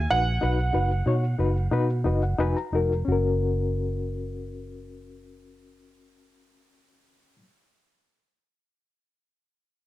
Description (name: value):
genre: uptempo 1960s-style soul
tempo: 85-96 BPM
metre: 4/4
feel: straight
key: F# major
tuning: A4 = 436 Hz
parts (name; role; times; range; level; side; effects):
- clear grand piano; melody; 0.0-2.3 s; F#5 to G#5; -28 LUFS; right 3 dB; tape echo
- vintage muted fingered electric bass; bass; 0.0-7.4 s; E#1 to B2; -25 LUFS; right 1 dB; none
- reed electric piano; accompaniment; 0.1-7.4 s; C#4 to A#5; -28 LUFS; left 4 dB; fast tremolo
room: light reverb, small room ambience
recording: none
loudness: -22 LUFS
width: side -15 dB against mid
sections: 0.0-3.1 A section; 3.1-5.9 B section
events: slowing down 0.0-3.1; reed electric piano fill 1.7-3.1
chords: 0.0 B; 3.1 F#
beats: | 0.43 1.06 1.72 2.39 | 3.09 3.79 4.50 5.21